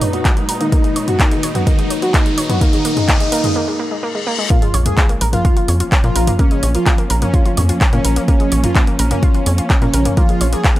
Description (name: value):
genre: melodic techno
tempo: 127 BPM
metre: 4/4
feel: straight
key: Bb phrygian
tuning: A4 = 440 Hz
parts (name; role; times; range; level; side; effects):
- soft supersaw; melody; 0.0-10.7 s; Db4 to Ab4; -21 LUFS; equal; sidechain pumping, analog delay
- airy dreamy lead; second line; 0.0-10.7 s; Db3 to Ab3; -27 LUFS; equal; chorus, sidechain pumping, analog delay
- dark studio string section; sustained chords; 0.0-10.8 s; Bb2 to Cb5; -26 LUFS; equal; sidechain pumping
- analog pluck; arpeggios; 0.0-10.8 s; Ab3 to Db5; -24 LUFS; equal; chorus, sidechain pumping, analog delay
- analog drone; drone; 0.1-3.6 s; Bb2; -36 LUFS; equal; none
- punchy analog drum machine; drums; 0.0-10.8 s; handclaps, hi-hat, toms; -20 LUFS; equal; none
- riser, reverse cymbal and sub drop; sound effects; 0.5-6.4 s; none; -26 LUFS; left 1 dB; none
- electronic kick drum; drums; 0.3-10.7 s; none; -14 LUFS; equal; none
- tight sequencer bass; bass; 4.7-10.6 s; Bb1 to Bb2; -16 LUFS; equal; sidechain pumping
room: light reverb, digital ambience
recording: dry, gritty hardware recording, transformer saturation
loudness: -13 LUFS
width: side -15 dB against mid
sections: 0.0-4.5 A section; 4.5-10.8 B section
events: build-up 0.0-4.5; riser 0.5-3.6; filter sweep on synth arpeggio sound 0.0-4.5; filter sweep on supersaw synth 0.0-4.5; filter sweep on digital synth lead 0.0-4.5; filter sweep on string section 0.0-4.5; break 3.6-4.5; reverse cymbal 3.6-4.5; drop 4.5-10.8; impact 4.5-6.4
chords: 0.0 Abm/Bb; 4.5 Bbm